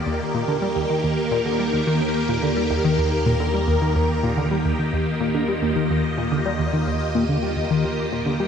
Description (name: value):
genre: ambient, sequencer-driven space music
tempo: 108 BPM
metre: 4/4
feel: straight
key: Eb major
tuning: A4 = 441 Hz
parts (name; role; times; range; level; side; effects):
- phased string machine; sustained chords; 0.0-8.5 s; Eb3 to Eb5; -23 LUFS; equal; ensemble chorus, phaser, shimmer reverb
- analog drone; bass; 0.7-8.5 s; Eb2; -29 LUFS; equal; chorus, phaser
- bubbling stepped-filter texture; texture; 0.0-8.5 s; Bb3 to Bb4; -35 LUFS; right 1 dB; chorus, built-in reverb, shimmer reverb
- tight sequenced synth; riff; 0.1-8.5 s; Eb2 to G3; -23 LUFS; left 1 dB; chorus, phaser, tape echo, shimmer reverb
room: wet plate reverb, RT60 2.9 s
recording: cassette tape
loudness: -19 LUFS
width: side -7 dB against mid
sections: 0.0-8.5 A section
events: none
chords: 0.0 Eb